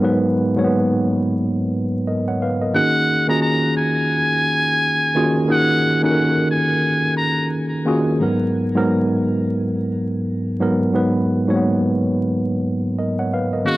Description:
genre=hip hop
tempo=88 BPM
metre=4/4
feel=swing 58% on 16ths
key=unclear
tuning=A4 = 440 Hz
part: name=mellow tine electric piano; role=accompaniment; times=0.0-13.8 s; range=Ab2 to Gb5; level=-17 LUFS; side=equal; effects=medium stereo tremolo, cassette tape, high-pass filter, low-pass filter
part: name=trumpet with metal mute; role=melody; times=2.8-7.5, 13.7-13.8 s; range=Gb4 to Bb5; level=-20 LUFS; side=equal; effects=high-pass filter, low-pass filter, tape echo
room=light reverb, small room ambience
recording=dry, gritty hardware recording, vinyl crackle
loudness=-16 LUFS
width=side -18 dB against mid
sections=0.0-13.7 A section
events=none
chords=0.0 Abm9; 2.8 Ebm11; 8.2 Abm9

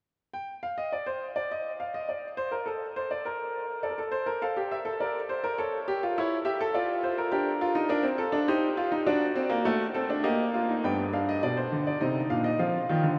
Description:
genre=classical, baroque-style 4-part fugue for grand piano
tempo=103 BPM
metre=3/4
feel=straight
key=G minor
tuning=A4 = 440 Hz
part: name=clear baby grand piano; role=solo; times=0.3-13.2 s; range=G2 to G5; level=-29 LUFS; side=equal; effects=none
room=wet huge ambient reverb, RT60 8.2 s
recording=in a vast, echoing space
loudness=-29 LUFS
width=mono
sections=0.3-10.8 A section; 10.8-13.2 B section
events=none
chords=0.3 N.C.; 3.9 Dm; 5.0 Bbadd9; 5.6 A7; 6.8 Dm/F; 7.3 Gm/D; 8.5 Cm/Eb; 9.1 D7; 10.2 Gm/Bb; 10.8 G7; 12.0 Cm; 12.6 F5

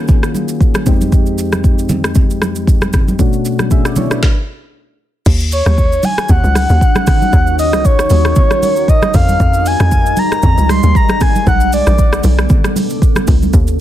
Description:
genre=amapiano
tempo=116 BPM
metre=4/4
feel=swing 55% on 16ths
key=unclear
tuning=A4 = 440 Hz
part: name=soft electric-piano-like synth keys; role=accompaniment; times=0.0-4.4 s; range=F2 to Fb5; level=-17 LUFS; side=left 2 dB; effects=chorus
part: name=afro-pop drum kit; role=drums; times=0.1-13.8 s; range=crash cymbal, hi-hat, kick drum, rim click, shaker, snare drum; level=-13 LUFS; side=equal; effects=soft clipping on snare
part: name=congas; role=percussion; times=0.1-13.5 s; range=none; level=-20 LUFS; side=right 2 dB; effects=none
part: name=deep dark ambient pad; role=sustained chords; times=6.0-13.8 s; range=C#3 to A4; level=-20 LUFS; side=equal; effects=chorus, built-in reverb, sidechain pumping
part: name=hollow log drum bass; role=bass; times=5.3-13.8 s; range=Bb1 to F2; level=-13 LUFS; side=equal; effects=none
part: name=breathy flute-like synth lead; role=melody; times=5.5-12.2 s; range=Db5 to C6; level=-16 LUFS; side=equal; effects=chorus, digital delay
room=little or no reverb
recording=dense, heavily limited modern master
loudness=-10 LUFS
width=side -12 dB against mid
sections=0.0-5.3 A section; 5.3-13.8 B section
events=stop 4.2-5.3; drop 5.3-13.8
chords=0.0 Ebm9; 0.9 Fm9; 3.2 Bm9; 5.3 Ebm7; 9.1 Fm9; 11.5 Bm9

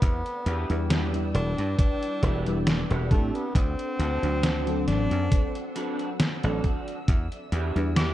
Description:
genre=vaporwave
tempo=68 BPM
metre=4/4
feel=swing 54% on 16ths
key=E minor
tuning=A4 = 435 Hz
part: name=warm tenor saxophone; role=melody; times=0.0-8.1 s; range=A3 to G4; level=-33 LUFS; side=equal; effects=tape echo
part: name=soft string machine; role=sustained chords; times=0.0-8.1 s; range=C4 to E6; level=-39 LUFS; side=equal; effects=ensemble chorus, vintage 12-bit sampler grit
part: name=dry thumbed slap bass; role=bass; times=0.0-8.1 s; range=E1 to A2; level=-27 LUFS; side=equal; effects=none
part: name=detuned 8-bit digital drum machine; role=drums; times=0.0-8.1 s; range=hi-hat, snare drum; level=-28 LUFS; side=equal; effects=none
part: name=electronic kick drum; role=drums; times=0.0-7.3 s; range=none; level=-24 LUFS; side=equal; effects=none
part: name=electric guitar through a small old amp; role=riff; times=0.5-8.1 s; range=D4 to D5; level=-37 LUFS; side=right 3 dB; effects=ensemble chorus, tape echo
part: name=FM electric piano with soft pad layer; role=accompaniment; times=0.7-8.1 s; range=F#3 to C5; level=-32 LUFS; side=left 2 dB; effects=lush chorus, vintage 12-bit sampler grit
room=little or no reverb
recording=dark, warm production, cassette tape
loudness=-23 LUFS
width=side -14 dB against mid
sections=0.0-8.1 A section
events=none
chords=0.0 Em7; 3.6 D7; 7.1 Em7

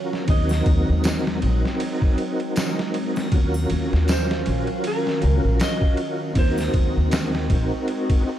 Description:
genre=trip hop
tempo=79 BPM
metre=4/4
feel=swing 57% on 16ths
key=unclear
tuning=A4 = 440 Hz
part: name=clean lap steel guitar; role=melody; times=0.0-8.4 s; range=Bb4 to Eb5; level=-30 LUFS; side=right 2 dB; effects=dub echo
part: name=tonewheel organ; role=accompaniment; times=0.0-8.4 s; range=C4 to Bb4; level=-27 LUFS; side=equal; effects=chorus vibrato, slow rotary speaker, tremolo, tape echo
part: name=warbly tape-like pad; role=sustained chords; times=0.0-8.4 s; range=Eb3 to F5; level=-28 LUFS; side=equal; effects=chorus, built-in reverb, vintage 12-bit sampler grit
part: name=trip hop sampler-style drum kit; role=drums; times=0.1-8.3 s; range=kick drum, ride cymbal, snare drum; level=-24 LUFS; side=equal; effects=none
part: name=upright bass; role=bass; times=0.3-7.7 s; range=Bb1 to Eb2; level=-22 LUFS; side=equal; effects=none
part: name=triangle and tambourine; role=percussion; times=0.5-7.3 s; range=none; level=-39 LUFS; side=left 1 dB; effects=none
room=digital ambience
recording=dark, warm production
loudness=-19 LUFS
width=side -12 dB against mid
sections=0.0-8.4 A section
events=none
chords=0.3 Ab7; 3.3 Ebm9; 6.4 Ab7

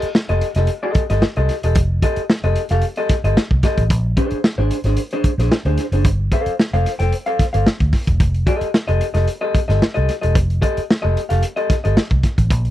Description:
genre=funk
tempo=112 BPM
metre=4/4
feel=straight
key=unclear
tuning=A4 = 440 Hz
part: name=electric guitar through a small old amp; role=accompaniment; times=0.0-12.0 s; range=D4 to G5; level=-21 LUFS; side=left 2 dB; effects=none
part: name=vintage muted fingered electric bass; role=bass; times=0.0-12.7 s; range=E1 to D2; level=-18 LUFS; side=equal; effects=none
part: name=crunchy breakbeat drum kit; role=drums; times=0.0-12.7 s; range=hi-hat, kick drum, snare drum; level=-18 LUFS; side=equal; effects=none
room=little or no reverb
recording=dry, close 1970s-style studio recording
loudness=-15 LUFS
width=side -14 dB against mid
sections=0.0-12.7 A section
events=none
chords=0.0 F9; 3.9 Bb9; 6.1 G9sus4; 8.2 F9

